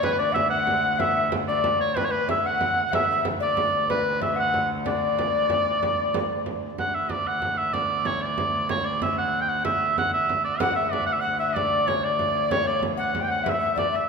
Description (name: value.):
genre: medieval dance.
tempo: 125 BPM (dotted quarters).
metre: 6/8.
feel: straight.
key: D major.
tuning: A4 = 440 Hz.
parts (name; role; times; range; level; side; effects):
clear shawm; melody; 0.0-14.1 s; B4 to G5; -24 LUFS; right 2 dB; none.
mellow tenor recorder; second line; 0.0-6.4, 10.6-14.1 s; B4 to G5; -26 LUFS; left 5 dB; none.
warm viola da gamba; drone; 0.0-14.1 s; D2; -33 LUFS; left 2 dB; none.
frame drum; percussion; 0.0-13.9 s; none; -31 LUFS; right 3 dB; none.
room: wet concert hall reverb, RT60 2.2 s.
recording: minimal, uncompressed stereo recording.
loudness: -21 LUFS.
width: side -5 dB against mid.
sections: 0.0-6.8 A section; 6.8-14.1 B section.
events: none.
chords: none.